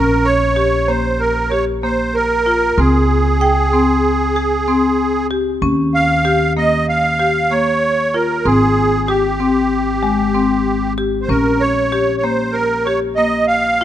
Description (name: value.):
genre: contemporary instrumental, chamber music in an uneven meter.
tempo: 190 BPM (eighths).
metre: 9/8.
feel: straight.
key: Bb dorian.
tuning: A4 = 441 Hz.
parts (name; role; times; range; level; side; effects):
musette accordion; melody; 0.0-13.8 s; G4 to F5; -16 LUFS; right 2 dB; none.
marimba with medium hard mallets; arpeggios; 0.0-13.8 s; Ab3 to G5; -18 LUFS; left 3 dB; none.
upright bass; bass; 0.0-13.8 s; Ab1 to Eb2; -21 LUFS; right 1 dB; none.
room: light reverb.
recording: close, detailed microphones.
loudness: -13 LUFS.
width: side -11 dB against mid.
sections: 0.0-13.8 A section.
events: none.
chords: 0.0 Bbm; 2.8 Db5; 5.6 Eb7sus2; 8.5 Abmaj7; 11.3 Bbm6.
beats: 0.25 0.57 0.88 1.20 1.51 1.83 2.15 2.46 | 2.78 3.10 3.41 3.73 4.04 4.36 4.67 4.99 5.30 | 5.62 5.93 6.25 6.57 6.88 7.20 7.51 7.83 8.14 | 8.46 8.77 9.09 9.40 9.72 10.03 10.35 10.66 10.98 | 11.29 11.61 11.92 12.24 12.55 12.87 13.18 13.49 13.81.